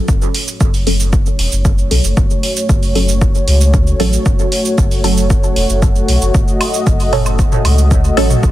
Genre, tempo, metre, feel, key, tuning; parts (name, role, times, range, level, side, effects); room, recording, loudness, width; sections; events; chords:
dub techno; 115 BPM; 4/4; straight; F# dorian; A4 = 440 Hz
dark analog pad; sustained chords; 0.0-8.5 s; A3 to D#5; -20 LUFS; left 1 dB; chorus, sidechain pumping
warm sub bass; bass; 0.1-8.5 s; E1 to C#2; -15 LUFS; equal; sidechain pumping
electronic cabasa and hi-hat; drums; 0.1-8.5 s; -21 LUFS; right 3 dB
electronic kick drum; drums; 0.1-8.5 s; -14 LUFS; equal
filtered dub chord stab; stabs; 0.9-8.3 s; F#3 to A4; -20 LUFS; right 1 dB; phaser, sidechain pumping, dub echo
electronic woodblock and toms; percussion; 6.6-8.4 s; -20 LUFS; right 1 dB; sidechain pumping on perc, sidechain pumping on toms, dub echo
digital ambience; dense, heavily limited modern master; -11 LUFS; side -14 dB against mid
0.0-8.5 A section
0.0 F#m